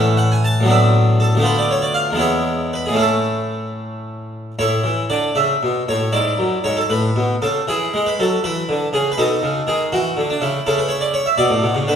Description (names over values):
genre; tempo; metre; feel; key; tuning
classical, baroque-style suite movement for harpsichord; 79 BPM (dotted quarters); 6/8; rubato; A major; A4 = 442 Hz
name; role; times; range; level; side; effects
harpsichord; solo; 0.0-12.0 s; D2 to A5; -16 LUFS; equal; none
room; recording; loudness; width
wet recital hall reverb, RT60 1.3 s; heard from further back in the room; -16 LUFS; side -8 dB against mid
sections
0.0-4.6 A section; 4.6-12.0 B section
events
none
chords
0.0 A; 0.7 Bm7/A; 1.4 Bm7b5/D; 2.2 E; 3.0 A; 6.1 E7; 6.9 A; 7.7 E; 9.2 B7; 9.9 C#madd11; 10.6 C#m7; 11.4 Asus24